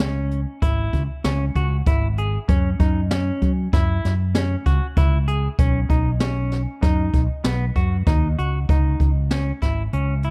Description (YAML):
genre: progressive instrumental, band music in an uneven meter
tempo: 97 BPM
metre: 5/4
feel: straight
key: C# minor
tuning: A4 = 439 Hz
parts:
  - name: semi-hollow electric guitar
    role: arpeggios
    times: 0.0-10.3 s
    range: B3 to G#4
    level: -30 LUFS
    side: equal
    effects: spring reverb
  - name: mellow fretless electric bass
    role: bass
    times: 0.0-10.3 s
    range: G#1 to F#3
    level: -24 LUFS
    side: equal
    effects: none
  - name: jazz brush drum kit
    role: drums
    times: 0.0-10.3 s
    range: hi-hat, kick drum, snare drum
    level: -23 LUFS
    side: equal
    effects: none
room: little or no reverb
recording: none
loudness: -21 LUFS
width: mono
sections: 0.0-8.7 A section; 8.7-10.3 B section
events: none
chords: 0.0 C#m; 2.5 F#5; 5.6 B; 8.7 C#m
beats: 0.62 1.24 1.86 | 2.48 3.10 3.72 4.34 4.96 | 5.58 6.20 6.83 7.45 8.07 | 8.69 9.31 9.93